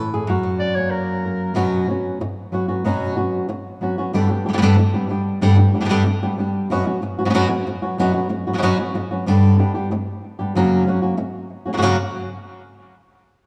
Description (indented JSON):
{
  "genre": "flamenco",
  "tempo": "187 BPM",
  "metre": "4/4",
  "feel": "straight",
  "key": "unclear",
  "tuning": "A4 = 440 Hz",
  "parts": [
    { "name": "flamenco guitar", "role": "melody", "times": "0.0-12.0 s", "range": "F#2 to A#4", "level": "-20 LUFS", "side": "equal", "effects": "none" },
    { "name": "warm soprano saxophone", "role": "second line", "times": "0.6-1.6 s", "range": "A#4 to D5", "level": "-27 LUFS", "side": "equal", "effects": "none" }
  ],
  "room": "wet scoring stage reverb, RT60 1.6 s",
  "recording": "none",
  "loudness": "-20 LUFS",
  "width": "mono",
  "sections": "0.0-1.6 A section; 1.6-11.8 B section; 11.8-13.1 C section",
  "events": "none",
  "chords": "0.3 F#; 1.6 F#sus4; 4.1 G; 6.7 F#sus4; 9.3 G; 10.6 F#; 11.8 N.C."
}